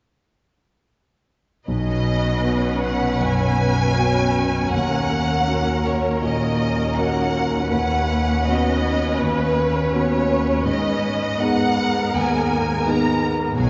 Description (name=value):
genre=cinematic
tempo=80 BPM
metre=4/4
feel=rubato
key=B major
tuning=A4 = 438 Hz
part: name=warm symphonic violin section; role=melody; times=1.7-13.7 s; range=B4 to A#5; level=-26 LUFS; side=equal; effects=none
part: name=warm concert grand piano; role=accompaniment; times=1.7-13.7 s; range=B1 to G#4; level=-24 LUFS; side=equal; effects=none
part: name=warm studio viola section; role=accompaniment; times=1.7-13.7 s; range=B3 to B4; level=-28 LUFS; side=equal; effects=none
part: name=clear symphonic cello section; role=bass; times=1.7-13.7 s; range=D#2 to B2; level=-27 LUFS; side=equal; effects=none
room=wet church reverb, RT60 2.7 s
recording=recorded in a church or concert hall, nothing above 7.6 kHz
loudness=-20 LUFS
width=mono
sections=1.7-13.7 A section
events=none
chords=1.7 Badd9; 4.7 D#m7; 7.7 Badd9/D#; 10.7 G#madd9